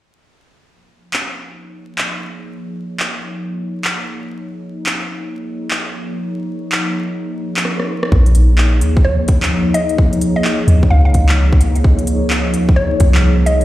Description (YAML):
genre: future garage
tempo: 129 BPM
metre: 4/4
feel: swing 63% on 16ths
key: Bb minor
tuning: A4 = 442 Hz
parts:
  - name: warbly tape-like pad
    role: sustained chords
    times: 1.3-13.6 s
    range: F3 to Db5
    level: -21 LUFS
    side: equal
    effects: chorus, built-in reverb, sidechain pumping
  - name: organic electronic drum kit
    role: drums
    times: 1.1-13.6 s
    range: handclaps, hi-hat, rim click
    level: -20 LUFS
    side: equal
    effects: overdrive
  - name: soft 808-style bass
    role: bass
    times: 8.1-13.6 s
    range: Bb1 to Eb2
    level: -13 LUFS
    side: equal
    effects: sidechain pumping
  - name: electronic kick drum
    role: drums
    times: 8.1-13.1 s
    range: none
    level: -14 LUFS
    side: equal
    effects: none
  - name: mallet-like synth pluck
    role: melody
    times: 9.0-13.6 s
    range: Db5 to F5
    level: -22 LUFS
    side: left 1 dB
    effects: chorus, tape echo
room: light reverb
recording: played on a big sound system in a bare room, stone room reverb, vinyl crackle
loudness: -13 LUFS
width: side -15 dB against mid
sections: 0.7-8.1 A section; 8.1-13.6 B section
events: drum fill 7.7-8.1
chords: 0.7 Bbm7; 8.1 Bbm11